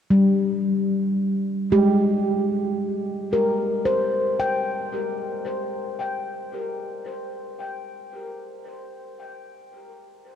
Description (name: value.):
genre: ambient.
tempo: free time.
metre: none.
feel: none.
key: Ab major.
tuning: A4 = 439 Hz.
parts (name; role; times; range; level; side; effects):
handpan; solo; 0.1-8.1 s; G3 to G5; -22 LUFS; equal; diffuse ambient delay.
room: wet cathedral reverb, RT60 6.3 s.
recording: cassette tape.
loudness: -21 LUFS.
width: side -9 dB against mid.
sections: 0.0-10.4 A section.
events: none.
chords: 0.0 Abmaj7; 7.1 C5.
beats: free time.